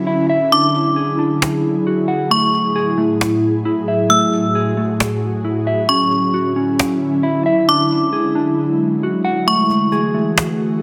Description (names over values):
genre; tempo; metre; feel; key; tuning
hip hop, atmospheric cloud-rap; 134 BPM; 4/4; half-time; F# minor; A4 = 440 Hz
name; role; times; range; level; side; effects
ethereal airy pad; sustained chords; 0.0-10.8 s; A2 to G#4; -20 LUFS; equal; ensemble chorus, built-in reverb
mellow electric guitar; arpeggios; 0.0-10.8 s; A3 to F#5; -22 LUFS; equal; tape echo
metallic FM bell; melody; 0.5-9.9 s; C#6 to E6; -19 LUFS; equal; chorus, tape echo
cajon; drums; 1.4-10.5 s; none; -20 LUFS; equal; none
room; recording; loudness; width
moderate digital room reverb, RT60 1.2 s; none; -17 LUFS; mono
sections
0.0-9.5 A section; 9.5-10.8 B section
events
break 0.0-2.3; kick muted 9.5-10.8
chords
0.0 Dmaj9; 0.5 E9; 2.3 F#m9; 5.9 Dmaj9; 7.7 E9; 9.5 F#m9